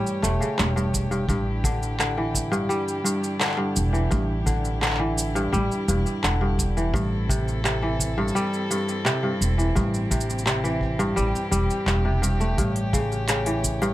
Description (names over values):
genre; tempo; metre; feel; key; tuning
folktronica; 85 BPM; 4/4; straight; unclear; A4 = 440 Hz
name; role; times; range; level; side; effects
dark string quartet; sustained chords; 0.0-13.9 s; A3 to C#5; -32 LUFS; equal; none
kora; arpeggios; 0.0-13.9 s; G2 to A3; -25 LUFS; equal; ping-pong delay
organic electronic drum kit; drums; 0.1-13.9 s; handclaps, hi-hat, shaker; -27 LUFS; right 1 dB; none
upright bass; bass; 0.2-13.9 s; E1 to A1; -26 LUFS; equal; none
kick drum; drums; 0.9-13.8 s; none; -27 LUFS; equal; none
room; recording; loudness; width
light reverb; none; -21 LUFS; side -15 dB against mid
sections
0.0-13.9 A section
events
kick drops out 11.9-12.6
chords
0.0 A7; 1.3 Em7; 6.9 C6; 12.6 A7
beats
0.58 | 1.29 2.00 2.70 3.41 | 4.11 4.82 5.52 6.23 | 6.94 7.64 8.35 9.05 | 9.76 10.46 11.17 11.88 | 12.58 13.29